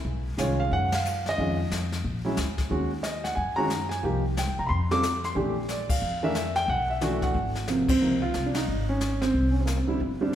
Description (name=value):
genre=jazz piano trio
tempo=181 BPM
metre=4/4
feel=swing 63% on 8ths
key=unclear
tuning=A4 = 439 Hz
part: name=upright bass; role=bass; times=0.0-10.3 s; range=G1 to C3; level=-29 LUFS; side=equal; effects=none
part: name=jazz brush drum kit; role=drums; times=0.0-10.3 s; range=brushed snare drum, crash cymbal, hi-hat, kick drum, ride cymbal, snare drum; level=-33 LUFS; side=left 2 dB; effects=none
part: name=warm grand piano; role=melody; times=0.4-10.3 s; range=B#2 to D6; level=-26 LUFS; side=right 1 dB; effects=none
room=wet scoring stage reverb, RT60 1.7 s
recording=recorded in a church or concert hall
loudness=-24 LUFS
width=side -10 dB against mid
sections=0.0-8.0 A section; 8.0-10.3 B section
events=band accent 0.9, 5.9, 7.8, 8.5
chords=0.0 Badd9; 1.4 Fm7; 2.0 A#; 2.7 D#m7; 4.0 Cm7; 4.7 F5; 5.4 A#maj7#11; 6.7 Bm7; 7.3 G#7; 8.0 Dbmaj7; 9.3 Csus2